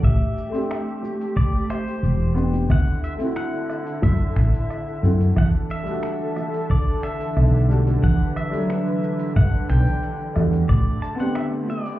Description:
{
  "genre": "sunset chillout",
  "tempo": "90 BPM",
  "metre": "4/4",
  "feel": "straight",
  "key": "E minor",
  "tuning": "A4 = 441 Hz",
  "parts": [
    { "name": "pedal steel guitar", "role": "melody", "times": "0.0-12.0 s", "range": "C5 to A5", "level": "-32 LUFS", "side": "left 2 dB", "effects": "tape echo" },
    { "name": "bright grand piano", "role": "accompaniment", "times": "0.0-12.0 s", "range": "F#3 to G4", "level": "-28 LUFS", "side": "moving between left 4 dB and right 2 dB", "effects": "auto-pan, ping-pong delay" },
    { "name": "muted studio string section", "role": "sustained chords", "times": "0.0-12.0 s", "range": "D3 to B4", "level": "-28 LUFS", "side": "right 1 dB", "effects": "none" },
    { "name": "woody fretless electric bass", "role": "bass", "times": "0.0-10.8 s", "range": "E1 to G2", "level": "-18 LUFS", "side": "equal", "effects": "none" },
    { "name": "dusty soul sampler-style drum kit", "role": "drums", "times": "0.0-12.0 s", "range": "finger snaps, hi-hat, shaker, woodblock", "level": "-38 LUFS", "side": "right 1 dB", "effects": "none" },
    { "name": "electronic kick drum", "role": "drums", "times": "0.0-10.8 s", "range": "none", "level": "-20 LUFS", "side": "equal", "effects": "none" },
    { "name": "bongos", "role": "percussion", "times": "1.0-11.8 s", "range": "none", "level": "-32 LUFS", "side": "left 3 dB", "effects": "none" }
  ],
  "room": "small room ambience",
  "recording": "heard muffled through a wall, club reverb, EQ",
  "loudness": "-19 LUFS",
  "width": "side -15 dB against mid",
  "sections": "0.0-12.0 A section",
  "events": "none",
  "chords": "0.0 Am11; 2.7 D9; 5.4 Em11; 10.7 Am11",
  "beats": "| 0.03 0.70 1.36 2.03 | 2.70 3.37 4.03 4.70 | 5.37 6.03 6.70 7.37 | 8.03 8.70 9.37 10.03 | 10.70 11.37"
}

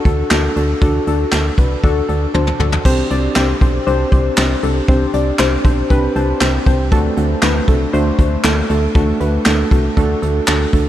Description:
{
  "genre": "synth-pop",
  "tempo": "118 BPM",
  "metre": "4/4",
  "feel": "straight",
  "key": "unclear",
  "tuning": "A4 = 440 Hz",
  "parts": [
    { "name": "muted felt-like synth keys", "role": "accompaniment", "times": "0.0-10.9 s", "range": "A3 to A5", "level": "-17 LUFS", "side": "equal", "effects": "chorus" },
    { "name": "solid FM bass", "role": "bass", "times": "0.1-10.9 s", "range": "B1 to D2", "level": "-18 LUFS", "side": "equal", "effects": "none" },
    { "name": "vintage brush drum kit", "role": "drums", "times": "0.1-10.8 s", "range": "crash cymbal, handclaps, hi-hat, kick drum, snare drum, toms", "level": "-17 LUFS", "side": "equal", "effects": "none" }
  ],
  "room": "moderate huge ambient reverb, RT60 7.9 s",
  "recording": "dreamy mix soaked in reverb",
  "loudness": "-13 LUFS",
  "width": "side -12 dB against mid",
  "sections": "0.0-2.9 A section; 2.9-10.9 A section",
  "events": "synth keys fill 2.1-2.9, 5.9-6.9; drum fill 2.3-2.9",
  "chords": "0.0 D; 2.9 Csus2; 6.9 D",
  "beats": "0.31 | 0.82 1.32 1.83 2.34 | 2.85 3.36 3.87 4.38 | 4.88 5.39 5.90 6.41 | 6.92 7.43 7.93 8.44 | 8.95 9.46 9.97 10.48"
}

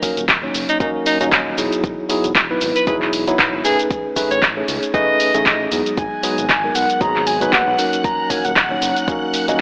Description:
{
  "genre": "deep house",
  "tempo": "116 BPM",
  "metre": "4/4",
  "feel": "swing 56% on 16ths",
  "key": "G# minor",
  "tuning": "A4 = 440 Hz",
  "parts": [
    { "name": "mellow tine electric piano", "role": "stabs", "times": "0.0-9.6 s", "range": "F#3 to D#5", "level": "-23 LUFS", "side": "equal", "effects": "overdrive, sidechain pumping" },
    { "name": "deep house drum kit", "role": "drums", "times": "0.0-9.6 s", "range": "handclaps, hi-hat, shaker", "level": "-21 LUFS", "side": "equal", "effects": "none" },
    { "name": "electronic kick drum", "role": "drums", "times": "0.0-9.2 s", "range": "none", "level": "-27 LUFS", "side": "equal", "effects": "none" },
    { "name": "round analog bass", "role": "bass", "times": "0.2-9.6 s", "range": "D#1 to E2", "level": "-32 LUFS", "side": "equal", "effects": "sidechain pumping" },
    { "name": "breathy alto saxophone", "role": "melody", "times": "0.7-5.7 s", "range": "D#4 to D#5", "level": "-23 LUFS", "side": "equal", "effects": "tape echo" },
    { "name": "breathy flute-like synth lead", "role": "melody", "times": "6.0-9.0 s", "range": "F#5 to A#5", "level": "-23 LUFS", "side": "equal", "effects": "tremolo, subtle chorus, cassette tape, tape echo" },
    { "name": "string machine, violins", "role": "texture", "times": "6.0-9.6 s", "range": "F#5 to F#6", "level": "-31 LUFS", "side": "equal", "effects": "ensemble chorus, sidechain pumping" }
  ],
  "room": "light reverb",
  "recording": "dry, gritty hardware recording, cassette tape, AM radio sound",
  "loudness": "-18 LUFS",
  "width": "mono",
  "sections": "0.0-9.6 A section",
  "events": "none",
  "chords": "0.0 D#m7; 1.6 Emaj9; 3.9 Amaj9#11; 6.0 G#m7; 8.0 D#m7",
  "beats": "0.28 0.80 1.32 | 1.84 2.35 2.87 3.39 | 3.91 4.42 4.94 5.46 | 5.97 6.49 7.01 7.53 | 8.04 8.56 9.08 9.60"
}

